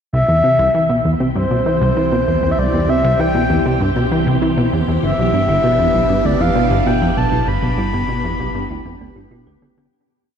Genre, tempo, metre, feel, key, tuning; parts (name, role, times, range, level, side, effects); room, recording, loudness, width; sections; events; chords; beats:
ambient, sequencer-driven space music; 98 BPM; 4/4; straight; C major; A4 = 438 Hz
breathy flute-like synth lead; melody; 0.1-9.3 s; C5 to B5; -18 LUFS; left 1 dB; chorus, tape echo
phased string machine; sustained chords; 0.1-9.9 s; C3 to G5; -23 LUFS; equal; ensemble chorus, phaser
thumb-piano-like synth pluck; arpeggios; 0.1-9.9 s; B3 to B4; -27 LUFS; moving between left 1 dB and right 5 dB; chorus, auto-pan, tape echo
plucky analog bass; riff; 0.1-9.9 s; G1 to E3; -17 LUFS; equal; tape echo
warm sub bass; bass; 0.1-9.9 s; G1 to C2; -26 LUFS; equal
wet cathedral reverb, RT60 6.0 s; in a vast, echoing space; -14 LUFS; side -7 dB against mid
0.1-9.9 A section
fade-in on synth arpeggio sound 0.1-9.9; fade-in on string machine 0.1-9.9; fade-in on sub bass 0.1-9.9; fade-out 6.7-9.9
0.1 C; 5.0 G
| 0.13 0.74 1.36 1.97 | 2.58 3.19 3.81 4.42 | 5.03 5.64 6.25 6.87 | 7.48 8.09 8.70 9.32